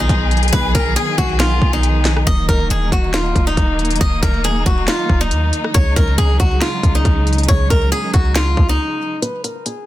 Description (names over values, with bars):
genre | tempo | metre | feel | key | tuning
hip hop, trap | 138 BPM | 4/4 | half-time | unclear | A4 = 439 Hz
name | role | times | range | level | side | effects
picked swing-style acoustic guitar | melody | 0.0-9.8 s | D#4 to Eb5 | -20 LUFS | left 1 dB | low-pass filter, ping-pong delay
dark chamber string section | sustained chords | 0.0-9.2 s | Db3 to Ab4 | -22 LUFS | equal | none
clean 808-style bass | bass | 0.0-8.8 s | Eb1 to Eb2 | -17 LUFS | equal | none
trap drum kit | drums | 0.1-9.8 s | handclaps, hi-hat, kick drum, rim click, snare drum | -18 LUFS | equal | vintage 12-bit sampler grit
room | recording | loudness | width
little or no reverb | dense, heavily limited modern master | -13 LUFS | side -14 dB against mid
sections
0.0-9.2 A section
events
break 8.8-9.2, 9.2-9.9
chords
0.0 B; 2.3 Ebm; 5.7 Dbsus4; 9.2 N.C.